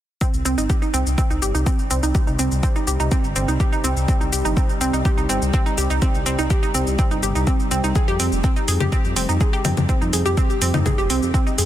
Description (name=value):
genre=melodic techno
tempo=124 BPM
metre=4/4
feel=straight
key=C minor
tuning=A4 = 440 Hz
part: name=analog pluck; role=arpeggios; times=0.2-11.7 s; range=C4 to Ab4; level=-23 LUFS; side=right 2 dB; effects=chorus, sidechain pumping, digital delay
part: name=analog drone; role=drone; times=1.1-11.7 s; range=C3 to G3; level=-31 LUFS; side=left 2 dB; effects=chorus, sidechain pumping
part: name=electronic kick drum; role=drums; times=0.2-11.4 s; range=none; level=-20 LUFS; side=equal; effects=overdrive
part: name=electronic shaker, hi-hat and congas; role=drums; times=0.2-11.7 s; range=none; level=-26 LUFS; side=left 3 dB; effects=overdrive
part: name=dark detuned saw bass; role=bass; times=0.3-11.7 s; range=F1 to F2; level=-22 LUFS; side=equal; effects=sidechain pumping
room=light reverb, digital ambience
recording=dense, heavily limited modern master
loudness=-17 LUFS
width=side -12 dB against mid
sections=0.2-11.7 A section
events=none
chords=0.2 Cm; 8.0 Fm